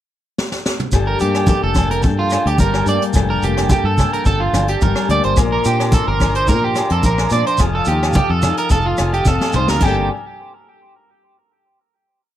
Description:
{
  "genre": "highlife guitar band",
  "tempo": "108 BPM",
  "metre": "4/4",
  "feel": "straight",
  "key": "G minor",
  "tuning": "A4 = 440 Hz",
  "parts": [
    { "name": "jazz brush drum kit", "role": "drums", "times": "0.4-10.0 s", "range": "crash cymbal, hi-hat, kick drum, rim click, snare drum, toms", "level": "-20 LUFS", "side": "equal", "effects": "none" },
    { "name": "flamenco guitar", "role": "accompaniment", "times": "0.9-10.1 s", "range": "G2 to Bb4", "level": "-23 LUFS", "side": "left 7 dB", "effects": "plate reverb" },
    { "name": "overdriven combo organ", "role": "sustained chords", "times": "0.9-10.1 s", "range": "A4 to Bb5", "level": "-29 LUFS", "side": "left 1 dB", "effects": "plate reverb" },
    { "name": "fingered electric bass", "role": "bass", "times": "0.9-10.1 s", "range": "F1 to Bb2", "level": "-19 LUFS", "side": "equal", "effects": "none" },
    { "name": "agogo bells", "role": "percussion", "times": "0.9-10.0 s", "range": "none", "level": "-29 LUFS", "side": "left 2 dB", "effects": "none" },
    { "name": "congas", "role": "percussion", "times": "0.9-10.1 s", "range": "none", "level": "-22 LUFS", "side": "right 1 dB", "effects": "none" },
    { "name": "shekere", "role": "percussion", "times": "0.9-10.1 s", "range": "none", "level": "-24 LUFS", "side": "right 1 dB", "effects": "none" },
    { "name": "electric guitar at the edge of break-up", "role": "arpeggios", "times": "1.1-10.1 s", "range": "F4 to D5", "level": "-19 LUFS", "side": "right 4 dB", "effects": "lush chorus, tape echo, plate reverb" }
  ],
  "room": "light reverb",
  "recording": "none",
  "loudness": "-14 LUFS",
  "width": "side -12 dB against mid",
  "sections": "0.0-0.9 pickup bar; 0.9-9.8 groove; 9.8-12.1 final chord",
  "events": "drum fill 0.4-0.9, 9.3-9.8",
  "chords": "0.0 N.C.; 0.9 Gmadd9; 5.4 Bbadd9; 7.6 F7; 9.8 Gmadd9"
}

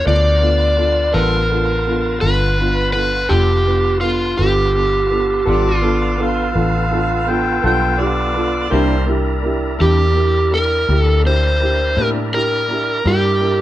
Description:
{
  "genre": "slow blues",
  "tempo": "55 BPM (dotted quarters)",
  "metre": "12/8",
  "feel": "straight",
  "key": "G mixolydian",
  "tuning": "A4 = 440 Hz",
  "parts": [
    { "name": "overdriven slide guitar", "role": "melody", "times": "0.0-13.6 s", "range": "F4 to D5", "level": "-17 LUFS", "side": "right 1 dB", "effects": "none" },
    { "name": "warm upright piano", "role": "accompaniment", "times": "0.0-13.6 s", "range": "Bb3 to B4", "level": "-22 LUFS", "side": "right 1 dB", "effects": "none" },
    { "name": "overdriven tonewheel organ", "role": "sustained chords", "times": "0.0-13.6 s", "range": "B3 to A5", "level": "-25 LUFS", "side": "right 1 dB", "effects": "slow rotary speaker" },
    { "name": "vintage muted fingered electric bass", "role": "bass", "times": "0.0-13.6 s", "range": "F1 to A2", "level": "-18 LUFS", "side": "left 1 dB", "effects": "none" },
    { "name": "clean electric guitar", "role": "accompaniment", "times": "1.1-12.2 s", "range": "C3 to A4", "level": "-25 LUFS", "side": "left 3 dB", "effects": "harmonic tremolo" },
    { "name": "mellow harmonica", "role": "second line", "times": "5.5-9.1 s", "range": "C5 to G5", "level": "-21 LUFS", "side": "equal", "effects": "overdrive" }
  ],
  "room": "light reverb",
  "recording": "band playing live in one room",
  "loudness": "-14 LUFS",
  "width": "side -14 dB against mid",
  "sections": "0.0-13.6 A section",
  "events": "none",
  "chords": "0.0 G9; 8.7 C9"
}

